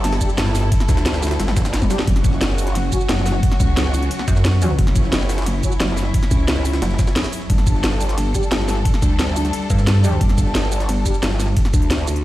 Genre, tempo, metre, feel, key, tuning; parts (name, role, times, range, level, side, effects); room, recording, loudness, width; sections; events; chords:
dark technical drum and bass; 177 BPM; 4/4; straight; A4 = 441 Hz
dark studio string section; sustained chords; 0.0-12.2 s; F#3 to A4; -27 LUFS; equal; sidechain pumping
growl bass; bass; 0.0-12.2 s; F#1 to D2; -20 LUFS; equal; chorus, overdrive, sidechain pumping
drum and bass drum kit; drums; 0.0-12.2 s; hi-hat, ride cymbal, shaker, snare drum, toms; -24 LUFS; equal; studio reverb
jungle sampler-style drum kit; drums; 0.0-12.2 s; ride cymbal, snare drum; -33 LUFS; equal
mellow brass ensemble; stabs; 0.2-5.7, 8.3-11.1 s; F#3 to G4; -30 LUFS; left 1 dB; ping-pong delay
electronic kick drum; drums; 0.2-11.8 s; -17 LUFS; equal; overdrive, studio reverb
pulsing pluck wobble bass; bass; 0.4-0.7, 3.1-11.6 s; F#1 to G2; -17 LUFS; equal; chorus, tube saturation
little or no reverb; played on a big sound system in a bare room, large studio reverb; -16 LUFS; side -16 dB against mid
0.0-12.2 A section
drum fill 1.7-2.1
0.0 G5; 2.1 F#5; 7.5 G5